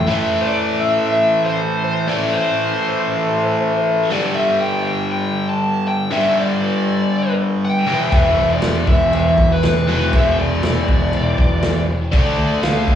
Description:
classic rock; 120 BPM; 4/4; straight; A minor; A4 = 440 Hz
dark smooth lead guitar; melody; 0.0-13.0 s; B4 to A5; -20 LUFS; left 1 dB; overdrive, slapback echo
biting overdriven guitar; riff; 0.0-13.0 s; E2 to D4; -18 LUFS; equal; slapback echo
fuzz picked electric bass; bass; 0.0-0.1, 8.1-13.0 s; E1 to E2; -20 LUFS; equal; overdrive
vintage drum kit; drums; 8.1-13.0 s; crash cymbal, kick drum, snare drum; -19 LUFS; equal
light reverb; live gig heard through the venue's PA, club reverb, studio reverb; -15 LUFS; side -9 dB against mid
0.1-13.0 A section
0.1 Am; 4.1 G5; 7.9 E5; 12.1 Dm

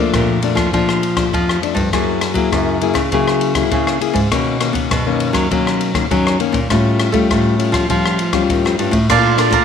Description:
samba and choro; 100 BPM; 4/4; straight; A4 = 440 Hz
nylon-string guitar; accompaniment; 0.0-9.6 s; F2 to Ab4; -18 LUFS; left 7 dB
nylon-string guitar; bass; 0.0-9.6 s; Eb2 to B3; -18 LUFS; right 1 dB
open jazz drum kit; drums; 0.1-9.6 s; crash cymbal, kick drum, ride cymbal, rim click; -20 LUFS; left 2 dB
warm clarinet; second line; 9.1-9.6 s; F4; -20 LUFS; right 8 dB
cavaquinho; accompaniment; 9.1-9.6 s; Bb4 to A5; -14 LUFS; right 11 dB
moderate echo chamber reverb, RT60 1.7 s, studio reverb; 1960s-style stereo with parts hard left and right; -14 LUFS; side -7 dB against mid
0.0-9.1 A section
0.0 Bbmaj7; 1.9 Gb9; 4.3 Bmaj9; 6.7 Aaug7; 9.1 Bbmaj7

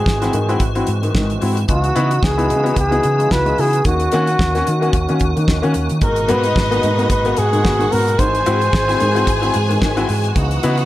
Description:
disco; 111 BPM; 4/4; swing 56% on 16ths; G# minor; A4 = 440 Hz
breathy flugelhorn; melody; 0.0-10.1 s; F#4 to B#4; -19 LUFS; equal; tape echo
tonewheel organ; sustained chords; 0.0-10.9 s; A#2 to F#4; -26 LUFS; right 1 dB; chorus vibrato, fast rotary speaker
fingered electric bass; bass; 0.1-10.8 s; G#1 to D#3; -20 LUFS; equal
damped 70s drum kit; drums; 0.1-10.9 s; hi-hat, kick drum, snare drum; -20 LUFS; equal
warm baby grand piano; accompaniment; 0.2-10.8 s; G#2 to F#4; -21 LUFS; left 2 dB
warm studio string section; second line; 6.0-10.9 s; D#4 to G#5; -23 LUFS; left 1 dB
light reverb, small room ambience; -14 LUFS; side -15 dB against mid
0.0-6.0 A section; 6.0-10.9 B section
0.0 G#7b13; 1.7 C#m11; 3.9 D#m7; 6.0 G#m9; 8.2 G#7b13

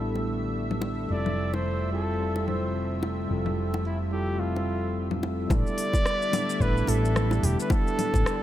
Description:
sunset chillout; 109 BPM; 4/4; swing 58% on 16ths; A4 = 440 Hz
mellow tine electric piano; accompaniment; 0.0-8.4 s; G3 to A4; -31 LUFS; equal; auto-pan, ping-pong delay
lush unison pad; sustained chords; 0.0-8.4 s; C3 to E5; -34 LUFS; equal; chorus
mellow fretless electric bass; bass; 0.0-8.2 s; E1 to A1; -28 LUFS; equal; analog chorus
bongos; percussion; 0.2-8.2 s; -34 LUFS; left 2 dB
deep house drum kit; drums; 0.7-8.4 s; congas, hi-hat, rim click, shaker; -32 LUFS; left 4 dB
mellow flugelhorn; melody; 1.1-8.4 s; E4 to D5; -31 LUFS; equal; ping-pong delay
electronic kick drum; drums; 5.5-8.2 s; -25 LUFS; equal
light reverb; -24 LUFS; side -12 dB against mid
0.0-5.5 A section; 5.5-8.4 B section
0.0 A7sus4; 1.1 Fmaj7; 5.5 A7sus4

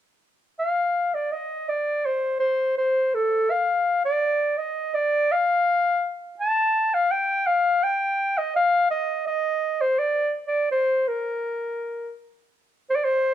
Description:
folk; 83 BPM; 4/4; straight; A4 = 441 Hz
warm clarinet; melody; 0.6-13.3 s; A4 to A5; -21 LUFS; equal
light reverb; band playing live in one room; -21 LUFS; side -11 dB against mid
0.0-1.3 A section; 1.3-12.9 B section

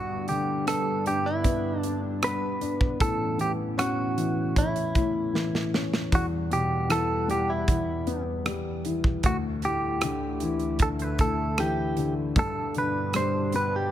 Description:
pop ballad; 77 BPM; 4/4; straight; A4 = 440 Hz
direct-recorded clean electric guitar; melody; 0.0-13.9 s; E4 to C5; -29 LUFS; right 2 dB
warm baby grand piano; accompaniment; 0.0-13.9 s; D2 to D4; -30 LUFS; left 3 dB
chorused pulse-width pad; sustained chords; 0.0-13.9 s; D2 to F#5; -32 LUFS; right 1 dB
modern studio drum kit; drums; 0.3-13.7 s; hi-hat, kick drum, rim click, snare drum; -27 LUFS; right 1 dB
light reverb, studio reverb; -24 LUFS; side -11 dB against mid
0.0-13.9 A section
drum fill 5.3-6.1
0.0 G; 3.0 Aadd9; 6.1 Emadd9; 9.2 Dsus2; 12.4 G

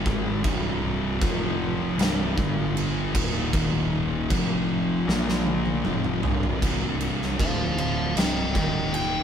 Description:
stoner and doom metal; 78 BPM; 4/4; straight; C minor; A4 = 440 Hz
thick fuzz guitar; riff; 0.0-9.2 s; C2 to Bb3; -28 LUFS; left 7 dB; distortion
thick fuzz guitar; riff; 0.0-9.2 s; C2 to Bb3; -30 LUFS; right 7 dB; distortion
fuzz picked electric bass; bass; 0.1-9.2 s; C1 to Bb1; -30 LUFS; equal; overdrive
oversized low-tuned drum kit; drums; 0.1-9.1 s; crash cymbal, kick drum, snare drum, toms; -26 LUFS; equal
fuzz lead guitar; melody; 7.4-9.2 s; C5 to G5; -28 LUFS; left 1 dB; distortion
moderate studio reverb, RT60 0.8 s; band playing live in one room; -22 LUFS; side -8 dB against mid
0.0-6.6 A section; 6.6-9.2 B section
drum fill 5.1-6.6; lead electric guitar solo 6.6-9.2
0.1 Cm; 1.2 F5; 2.0 C5; 2.4 G5; 3.1 Eb5; 4.3 F5; 5.1 Bb5; 5.8 C5; 7.4 D5; 8.2 Cm; 8.6 Eb5

